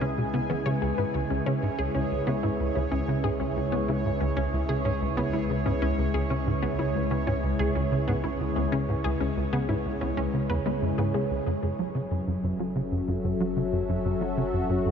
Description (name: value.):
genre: ambient, sequencer-driven space music.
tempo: 93 BPM.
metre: 4/4.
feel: straight.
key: C# minor, F# minor from 11.5 s.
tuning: A4 = 438 Hz.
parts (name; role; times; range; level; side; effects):
sweeping resonant pad; sustained chords; 0.0-14.9 s; C#3 to E5; -29 LUFS; left 1 dB; chorus.
wide unison pluck; arpeggios; 0.0-11.3 s; B3 to C#5; -34 LUFS; moving between left 4 dB and right 2 dB; auto-pan, tape echo.
tight sequencer bass; riff; 0.0-14.9 s; C#2 to G#3; -29 LUFS; equal; ensemble chorus, tape echo.
warm sub bass; bass; 0.0-14.9 s; F#1 to C#2; -36 LUFS; equal; tube saturation.
bubbling stepped-filter texture; texture; 0.0-11.5 s; G#4 to G#5; -35 LUFS; right 5 dB; chorus, built-in reverb.
room: wet huge ambient reverb, RT60 7.6 s.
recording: dark, warm production, nothing above 7.6 kHz.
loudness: -25 LUFS.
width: side -7 dB against mid.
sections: 0.0-11.5 A section; 11.5-14.9 B section.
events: none.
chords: 0.0 C#m7; 11.5 F#m7.